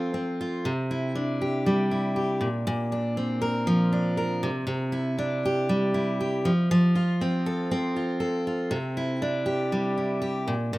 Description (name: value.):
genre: pop.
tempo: 119 BPM.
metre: 4/4.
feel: swing 60% on 16ths.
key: C major.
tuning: A4 = 440 Hz.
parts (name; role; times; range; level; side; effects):
picked steel-string acoustic guitar; solo; 0.0-10.8 s; Bb2 to Bb4; -24 LUFS; equal; ping-pong delay.
room: moderate small room reverb, RT60 0.5 s.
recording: rough home demo mix.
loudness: -24 LUFS.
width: side -19 dB against mid.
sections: 0.6-10.8 A section.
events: none.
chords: 0.0 F; 0.6 Cadd9; 2.4 Bbadd9; 4.4 Cadd9; 6.4 F; 8.7 Cadd9.